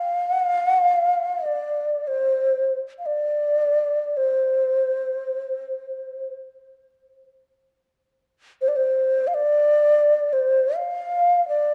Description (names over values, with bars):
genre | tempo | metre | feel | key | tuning
world meditative, free-time meditation music | free time | none | none | unclear | A4 = 440 Hz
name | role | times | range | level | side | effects
mellow low xiao | solo | 0.0-11.7 s | C5 to F5 | -22 LUFS | equal | cassette tape
room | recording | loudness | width
wet spring reverb, RT60 1.4 s, small room ambience | home recording on cassette | -22 LUFS | mono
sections
0.0-11.7 A section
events
none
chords
none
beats
free time